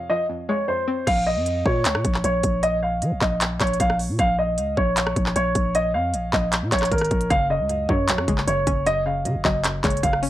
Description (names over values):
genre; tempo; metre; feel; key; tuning
hip hop, trap; 154 BPM; 4/4; half-time; Bb minor; A4 = 441 Hz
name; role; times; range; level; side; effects
dark concert grand piano; melody; 0.0-10.2 s; Bb4 to F5; -23 LUFS; equal; low-pass filter, tape echo
string-like resonator pluck; accompaniment; 0.0-1.1, 7.3-10.3 s; F2 to Db4; -29 LUFS; left 2 dB; chorus, low-pass filter
growling 808-style bass; bass; 1.1-10.3 s; Gb1 to F3; -25 LUFS; equal; none
trap drum kit; drums; 1.1-10.3 s; crash cymbal, handclaps, hi-hat, kick drum, rim click; -24 LUFS; equal; none
room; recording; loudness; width
digital ambience; dry, gritty hardware recording; -19 LUFS; side -14 dB against mid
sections
0.0-1.1 A section; 1.1-10.3 B section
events
break 0.0-1.1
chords
0.0 Fm; 1.1 Bbm; 7.3 Gbsus2